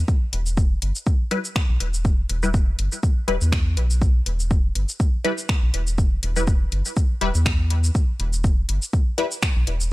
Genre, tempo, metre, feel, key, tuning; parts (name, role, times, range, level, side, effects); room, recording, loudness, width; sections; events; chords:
minimal techno; 122 BPM; 4/4; swing 55% on 16ths; E minor; A4 = 435 Hz
round analog bass; bass; 0.0-9.9 s; E1 to E2; -22 LUFS; equal; sidechain pumping
electronic kick drum; drums; 0.1-9.5 s; -20 LUFS; equal; overdrive
house drum kit; drums; 0.1-9.9 s; finger snaps, hi-hat, shaker; -28 LUFS; left 1 dB; overdrive
filtered dub chord stab; stabs; 1.3-9.3 s; G3 to B4; -26 LUFS; left 2 dB; phaser, analog chorus, cassette tape, tape echo
digital ambience; dry, gritty hardware recording; -19 LUFS; side -19 dB against mid
0.0-9.9 A section